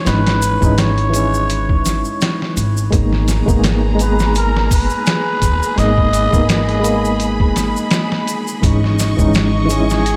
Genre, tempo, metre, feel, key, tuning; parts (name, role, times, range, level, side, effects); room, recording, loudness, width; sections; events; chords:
trip hop; 84 BPM; 4/4; swing 55% on 16ths; G# minor; A4 = 440 Hz
trumpet with cup mute; melody; 0.0-10.2 s; G#4 to D#5; -24 LUFS; equal; dub echo
reed electric piano; accompaniment; 0.0-10.2 s; E3 to G#4; -22 LUFS; equal; fast tremolo, vintage 12-bit sampler grit, tape echo
upright bass; bass; 0.1-10.2 s; G#1 to D#2; -20 LUFS; equal
trip hop sampler-style drum kit; drums; 0.1-10.2 s; hi-hat, kick drum, snare drum; -21 LUFS; equal
tube shaker; percussion; 0.1-10.2 s; -32 LUFS; equal
clear symphonic violin section; sustained chords; 2.9-10.2 s; G#4 to C#6; -27 LUFS; equal; vintage 12-bit sampler grit
moderate lush hall reverb, RT60 3.0 s; dreamy mix soaked in reverb; -15 LUFS; mono
0.0-10.2 A section
0.0 C#madd9/G#; 2.9 G#madd9; 8.6 C#madd9/G#